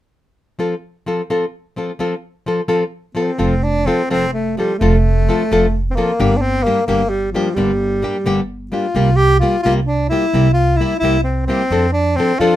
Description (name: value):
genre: mexican folk, mariachi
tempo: 87 BPM (dotted quarters)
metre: 6/8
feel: rubato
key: F major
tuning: A4 = 440 Hz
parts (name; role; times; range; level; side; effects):
- nylon-string guitar; accompaniment; 0.6-12.5 s; G2 to A4; -18 LUFS; left 1 dB; none
- warm tenor saxophone; melody; 3.2-12.6 s; F3 to G4; -17 LUFS; left 1 dB; none
- upright bass; bass; 3.4-12.6 s; F1 to F2; -18 LUFS; right 1 dB; none
room: light reverb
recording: minimal, uncompressed stereo recording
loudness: -14 LUFS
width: side -13 dB against mid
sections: 0.6-3.4 A section; 3.4-12.6 B section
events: none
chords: 0.6 F; 6.2 Gm; 8.9 C7sus4; 10.3 C7; 11.7 F6